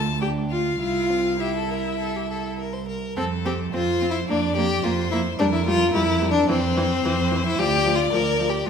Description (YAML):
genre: quick classical-period movement for string quartet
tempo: 99-112 BPM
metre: 4/4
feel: rubato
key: F major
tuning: A4 = 439 Hz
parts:
  - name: clear violin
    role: melody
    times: 0.0-8.7 s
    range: A4 to A5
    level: -28 LUFS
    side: left 8 dB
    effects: none
  - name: clear violin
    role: second line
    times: 0.0-8.7 s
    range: C4 to C5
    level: -24 LUFS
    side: left 2 dB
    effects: none
  - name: warm cello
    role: bass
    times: 0.0-8.7 s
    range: C2 to F2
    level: -26 LUFS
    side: right 4 dB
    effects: none
  - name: clear viola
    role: accompaniment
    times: 0.2-8.7 s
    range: E3 to G4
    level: -28 LUFS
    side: right 1 dB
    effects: none
room: wet recital hall reverb, RT60 1.4 s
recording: minimal, uncompressed stereo recording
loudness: -20 LUFS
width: side -7 dB against mid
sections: 0.0-3.2 A section; 3.2-8.7 B section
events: none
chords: 0.0 Dm; 0.8 C; 3.2 F; 4.3 Bb/F; 5.4 Gm7/F; 6.5 C/F; 7.6 Bb/D